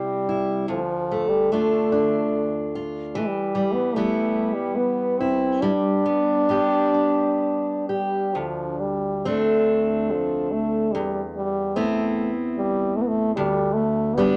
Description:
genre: celtic folk, Celtic slow air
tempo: 63-76 BPM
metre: 3/4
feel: rubato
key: D dorian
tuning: A4 = 440 Hz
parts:
  - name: warm French horn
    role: melody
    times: 0.0-14.4 s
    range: F3 to D4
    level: -25 LUFS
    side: equal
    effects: none
  - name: picked steel-string acoustic guitar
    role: accompaniment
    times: 0.0-14.4 s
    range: D2 to G4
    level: -26 LUFS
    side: equal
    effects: none
room: moderate studio ambience, RT60 0.5 s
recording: none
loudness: -23 LUFS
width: mono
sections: 0.0-8.4 A section; 8.4-14.4 B section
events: none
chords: 0.0 C; 0.7 Dm; 3.2 Em; 5.6 G; 8.4 D5; 10.9 Cmaj7/E; 13.4 G/D

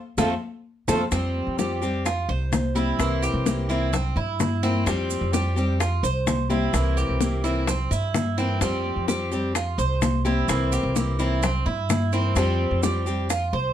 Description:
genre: latin, Cuban son and guajira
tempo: 128 BPM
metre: 4/4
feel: straight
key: unclear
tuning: A4 = 440 Hz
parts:
  - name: warm French horn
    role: melody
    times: 0.2-1.0 s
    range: A3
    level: -27 LUFS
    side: right 2 dB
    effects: none
  - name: fingerpicked steel-string acoustic guitar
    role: accompaniment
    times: 0.2-13.3 s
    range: C3 to G4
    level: -27 LUFS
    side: left 3 dB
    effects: none
  - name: Cuban tres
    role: arpeggios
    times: 0.2-13.7 s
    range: C4 to C5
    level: -28 LUFS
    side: right 5 dB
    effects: none
  - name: upright bass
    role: bass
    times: 0.2-13.7 s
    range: C2 to G2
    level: -25 LUFS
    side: equal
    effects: none
  - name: bongos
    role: percussion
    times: 0.2-13.7 s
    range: none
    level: -28 LUFS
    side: left 6 dB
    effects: none
  - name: congas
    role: percussion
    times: 0.2-13.7 s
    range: none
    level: -30 LUFS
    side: left 3 dB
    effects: none
  - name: maracas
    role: percussion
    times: 0.2-13.5 s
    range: none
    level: -35 LUFS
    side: right 8 dB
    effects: none
room: light reverb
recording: none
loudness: -21 LUFS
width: side -10 dB against mid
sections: 0.0-1.1 A section; 1.1-13.7 B section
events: band accent 0.0-1.1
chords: 0.0 F; 1.1 Fsus2; 3.0 C7; 4.9 Fsus2; 6.7 C7; 8.6 Fsus2; 10.5 C7; 12.4 Fsus2

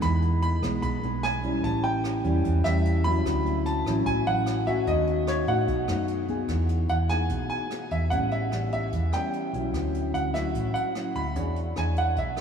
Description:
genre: bossa nova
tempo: 148 BPM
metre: 4/4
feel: straight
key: E major from 6.5 s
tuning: A4 = 440 Hz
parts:
  - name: clear baby grand piano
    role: melody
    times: 0.0-12.4 s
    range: C#5 to B5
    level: -30 LUFS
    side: right 2 dB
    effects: none
  - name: nylon-string guitar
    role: accompaniment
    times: 0.0-12.4 s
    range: A2 to C#5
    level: -28 LUFS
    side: left 2 dB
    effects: none
  - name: vintage muted fingered electric bass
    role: bass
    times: 0.0-12.4 s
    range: A1 to A2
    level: -27 LUFS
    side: right 1 dB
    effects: none
  - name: jazz brush drum kit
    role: drums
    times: 0.0-12.4 s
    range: hi-hat, kick drum, rim click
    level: -37 LUFS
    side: equal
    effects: none
room: wet cathedral reverb, RT60 5.5 s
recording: in a vast, echoing space, small room ambience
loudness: -24 LUFS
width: side -7 dB against mid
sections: 0.0-6.5 A section; 6.5-12.4 B section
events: none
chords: 0.0 Emaj7; 1.6 A7; 3.3 Dmaj9; 4.9 D#m7b5; 5.7 B7; 6.5 Emaj7; 8.1 A9; 9.7 Dmaj9; 11.4 E6

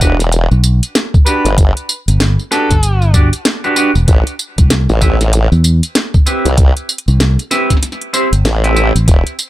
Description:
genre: glitch hop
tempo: 96 BPM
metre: 4/4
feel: swing 61% on 16ths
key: unclear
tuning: A4 = 440 Hz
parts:
  - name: clean electric guitar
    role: stabs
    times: 0.0-8.9 s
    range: C4 to D5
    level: -17 LUFS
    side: right 2 dB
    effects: sidechain pumping, digital delay
  - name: formant-sweep wobble bass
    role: bass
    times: 0.0-9.2 s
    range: E1 to C2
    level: -12 LUFS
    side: equal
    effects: chorus
  - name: drum and bass drum kit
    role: drums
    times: 0.0-9.5 s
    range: hi-hat, snare drum, tambourine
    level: -17 LUFS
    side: equal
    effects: none
  - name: electronic kick drum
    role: drums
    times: 0.0-9.2 s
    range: none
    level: -10 LUFS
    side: equal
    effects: none
  - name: fingered electric bass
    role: bass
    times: 0.5-9.1 s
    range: E1 to E2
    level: -10 LUFS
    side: equal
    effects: tube saturation
  - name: overdriven harmonica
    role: melody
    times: 1.3-3.1 s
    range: G4 to B4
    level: -21 LUFS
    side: left 2 dB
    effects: vintage 12-bit sampler grit, digital delay
room: little or no reverb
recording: none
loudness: -10 LUFS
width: side -15 dB against mid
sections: 0.0-9.5 A section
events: kick drops out 7.8-9.1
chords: 0.0 Em7; 4.1 Am7

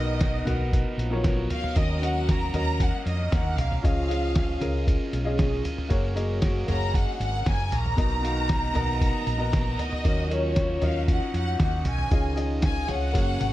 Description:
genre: piano-driven pop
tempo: 116 BPM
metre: 4/4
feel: straight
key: unclear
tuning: A4 = 440 Hz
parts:
  - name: warm studio violin section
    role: melody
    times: 0.0-13.5 s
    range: C#5 to A#5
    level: -31 LUFS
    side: left 1 dB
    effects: none
  - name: dark French horn section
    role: second line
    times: 0.0-13.5 s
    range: C#3 to G#4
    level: -36 LUFS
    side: right 1 dB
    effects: none
  - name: clear upright piano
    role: accompaniment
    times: 0.0-13.5 s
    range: B2 to F#5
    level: -31 LUFS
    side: left 1 dB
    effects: none
  - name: overdriven electric guitar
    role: riff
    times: 0.0-13.5 s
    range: F#2 to D#5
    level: -38 LUFS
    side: right 5 dB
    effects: phaser
  - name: hollow-body short-scale fingered electric bass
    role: bass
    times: 0.0-13.5 s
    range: F#1 to E#2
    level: -28 LUFS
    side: equal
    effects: none
  - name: lo-fi sampler-style drum kit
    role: drums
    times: 0.2-13.5 s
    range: hi-hat, kick drum, snare drum, toms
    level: -26 LUFS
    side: equal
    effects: none
room: light reverb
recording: dark, warm production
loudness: -23 LUFS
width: side -15 dB against mid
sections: 0.0-13.5 A section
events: drum fill 13.2-13.5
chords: 0.0 Bmaj7; 1.8 D#m7; 3.8 C#add9; 5.9 F#add9; 8.0 Bmaj7; 10.1 D#m7; 12.1 C#add9

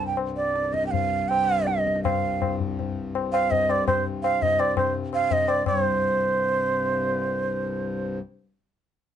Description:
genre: indian classical, Hindustani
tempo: 164 BPM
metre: 5/4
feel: uneven beats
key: C raga bhimpalasi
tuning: A4 = 438 Hz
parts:
  - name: bansuri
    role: melody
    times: 0.0-8.2 s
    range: C5 to G5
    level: -23 LUFS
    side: right 3 dB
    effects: none
  - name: hand-pumped harmonium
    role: drone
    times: 0.0-8.2 s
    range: C2 to G2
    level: -30 LUFS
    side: left 2 dB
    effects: none
  - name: tabla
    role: percussion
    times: 0.2-5.8 s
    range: none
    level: -28 LUFS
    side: left 8 dB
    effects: none
room: light reverb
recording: nothing above 10.6 kHz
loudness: -22 LUFS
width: side -9 dB against mid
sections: 0.0-5.7 A section; 5.7-7.4 B section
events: speeding up 0.0-7.4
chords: none

